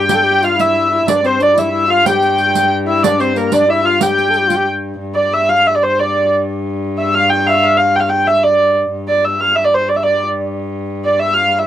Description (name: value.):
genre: medieval dance.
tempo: 123 BPM (dotted quarters).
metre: 6/8.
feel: straight.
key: unclear.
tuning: A4 = 440 Hz.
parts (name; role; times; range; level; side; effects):
dark hurdy-gurdy; melody; 0.0-11.7 s; Bb4 to G5; -12 LUFS; right 1 dB; none.
mellow trumpet; second line; 0.0-4.7 s; Bb3 to A4; -18 LUFS; left 6 dB; none.
warm viola da gamba; drone; 0.0-11.7 s; G2; -21 LUFS; left 1 dB; stereo widening.
riq; percussion; 0.1-4.7 s; none; -21 LUFS; right 9 dB; none.
room: light reverb.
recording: dry, close 1970s-style studio recording.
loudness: -12 LUFS.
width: side -11 dB against mid.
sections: 0.0-5.0 A section; 5.0-11.7 B section.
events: none.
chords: none.